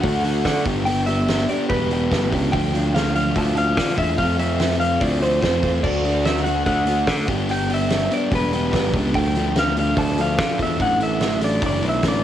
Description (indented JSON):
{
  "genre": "indie rock",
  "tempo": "145 BPM",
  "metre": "4/4",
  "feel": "straight",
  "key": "unclear",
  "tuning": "A4 = 436 Hz",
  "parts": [
    { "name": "electric guitar through a small old amp", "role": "melody", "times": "0.0-12.2 s", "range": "B4 to A5", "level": "-24 LUFS", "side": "equal", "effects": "wide subtle chorus, cassette tape, tape echo" },
    { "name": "fuzz guitar", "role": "riff", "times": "0.0-12.2 s", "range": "E3 to G4", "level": "-22 LUFS", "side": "equal", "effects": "distortion" },
    { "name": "modern bright picked electric bass", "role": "bass", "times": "0.0-12.2 s", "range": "E1 to D3", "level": "-23 LUFS", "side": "equal", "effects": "none" },
    { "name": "loose indie drum kit", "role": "drums", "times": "0.0-12.1 s", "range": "crash cymbal, hi-hat, kick drum, snare drum", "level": "-26 LUFS", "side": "equal", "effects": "cassette tape" }
  ],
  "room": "light reverb, studio ambience",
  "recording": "home recording on cassette",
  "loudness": "-18 LUFS",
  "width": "side -11 dB against mid",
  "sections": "0.0-12.2 A section",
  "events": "none",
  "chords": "0.0 D; 0.7 G; 2.5 Dm; 4.2 F; 5.8 D; 7.3 G; 9.1 Dm; 10.8 Asus4"
}